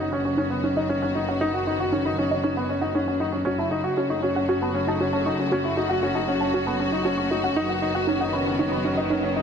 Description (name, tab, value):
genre	piano and strings electronica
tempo	117 BPM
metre	4/4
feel	straight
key	unclear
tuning	A4 = 443 Hz
part	clear studio string section	sustained chords	0.0-9.4 s	C#3 to F#4	-29 LUFS	left 1 dB	none
part	soft round pluck	arpeggios	0.0-9.3 s	D#4 to C#6	-28 LUFS	right 1 dB	chorus, ping-pong delay
part	warm grand piano	riff	0.0-9.4 s	B3 to F#4	-25 LUFS	left 1 dB	ping-pong delay
part	clear studio double bass section	bass	0.0-9.4 s	F#1	-32 LUFS	equal	none
room	moderate lush hall reverb, RT60 3.0 s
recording	none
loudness	-22 LUFS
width	side -7 dB against mid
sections	0.0-9.4 A section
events	fade-in on string section 0.0-9.4; filter sweep on synth arpeggio sound 0.0-9.4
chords	0.0 B/F#; 3.5 F#m; 7.6 B/F#